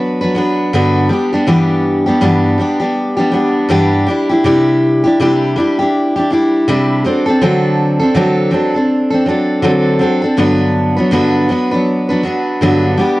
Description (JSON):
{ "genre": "pop", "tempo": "81 BPM", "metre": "4/4", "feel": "swing 60% on 16ths", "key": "G major", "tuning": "A4 = 440 Hz", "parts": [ { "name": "picked steel-string acoustic guitar", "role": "solo", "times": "0.0-13.2 s", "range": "G2 to B4", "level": "-11 LUFS", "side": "equal", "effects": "cassette tape" } ], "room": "light reverb, studio reverb", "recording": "home recording on cassette", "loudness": "-11 LUFS", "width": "side -19 dB against mid", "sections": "0.0-13.2 A section", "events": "none", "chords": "0.0 Gmaj7; 1.1 Em7/G; 4.1 Cadd9; 7.0 D7; 10.4 Gmaj7" }